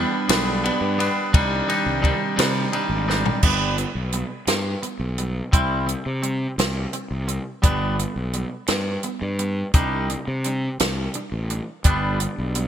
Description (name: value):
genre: indie rock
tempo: 57 BPM (dotted quarters)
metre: 6/8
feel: straight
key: G major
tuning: A4 = 445 Hz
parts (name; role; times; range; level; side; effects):
- dark analog pad; sustained chords; 0.0-3.4, 11.8-12.7 s; Eb3 to D5; -34 LUFS; left 1 dB; chorus
- twangy electric guitar; riff; 0.0-12.7 s; G3 to E4; -25 LUFS; right 1 dB; none
- fuzz fingered electric bass; bass; 0.0-12.7 s; G1 to C3; -25 LUFS; equal; overdrive
- compact cocktail drum kit; drums; 0.3-12.7 s; crash cymbal, hi-hat, kick drum, ride cymbal, snare drum, toms; -22 LUFS; equal; gated reverb
room: light reverb, small room ambience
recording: bright 1980s-style digital production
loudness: -20 LUFS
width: side -10 dB against mid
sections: 0.0-3.4 A section; 3.4-12.7 B section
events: drum fill 3.1-3.4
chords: 0.0 G; 1.3 Cmadd9; 3.4 G; 5.5 C; 7.6 G; 9.7 Cmadd9; 11.9 G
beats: 0.29 | 1.33 2.38 | 3.43 4.48 | 5.53 6.58 | 7.63 8.69 | 9.74 10.80 | 11.85